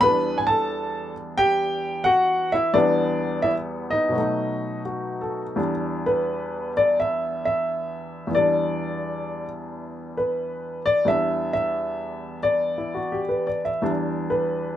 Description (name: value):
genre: solo jazz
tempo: 88 BPM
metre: 4/4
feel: swing 69% on 8ths, rubato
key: E minor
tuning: A4 = 440 Hz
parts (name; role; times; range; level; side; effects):
- clear upright piano; solo; 0.0-14.8 s; E2 to B5; -21 LUFS; equal; none
room: moderate booth ambience, RT60 0.2 s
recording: nothing above 10.5 kHz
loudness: -21 LUFS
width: side -11 dB against mid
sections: 0.0-5.6 A section; 5.6-14.8 B section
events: upright piano solo 5.6-14.8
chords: 0.0 Em7; 4.1 B7; 5.6 Em7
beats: | 0.03 0.70 1.38 2.06 | 2.75 3.44 4.14 4.86 | 5.57 6.27 6.97 7.65 | 8.33 9.02 9.70 10.38 | 11.06 11.74 12.43 13.12 | 13.82 14.52